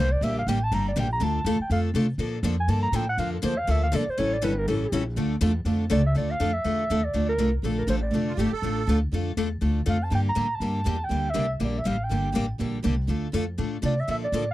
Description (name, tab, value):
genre	acoustic string swing (jazz manouche)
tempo	242 BPM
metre	4/4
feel	swing 56% on 8ths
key	D minor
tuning	A4 = 440 Hz
part	dark clarinet	melody	0.0-14.5 s	A4 to Bb5	-28 LUFS	right 1 dB	slapback echo
part	picked steel-string acoustic guitar	accompaniment	0.0-14.4 s	D3 to A4	-29 LUFS	left 5 dB	none
part	picked steel-string acoustic guitar	accompaniment	0.0-14.4 s	D3 to A4	-31 LUFS	right 5 dB	none
part	upright bass	bass	0.0-14.5 s	F1 to C3	-26 LUFS	equal	none
part	musette accordion	second line	8.3-9.0 s	F4 to A4	-31 LUFS	right 7 dB	none
room	little or no reverb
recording	dry, close 1970s-style studio recording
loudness	-23 LUFS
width	side -15 dB against mid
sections	0.0-6.2 A section; 6.2-14.5 B section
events	clarinet solo 0.0-6.2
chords	0.0 Gm; 1.2 Dm; 2.2 Bbmaj7; 4.2 A7b9; 5.2 Dm; 10.1 Gm; 13.1 Dm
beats	| 0.22 0.47 0.72 0.96 | 1.21 1.46 1.70 1.95 | 2.20 2.44 2.69 2.94 | 3.19 3.43 3.68 3.93 | 4.17 4.42 4.67 4.92 | 5.16 5.41 5.66 5.90 | 6.15 6.40 6.65 6.89 | 7.14 7.39 7.64 7.88 | 8.13 8.38 8.63 8.88 | 9.12 9.37 9.62 9.87 | 10.11 10.36 10.61 10.86 | 11.10 11.35 11.60 11.85 | 12.09 12.34 12.59 12.84 | 13.09 13.33 13.58 13.83 | 14.08 14.32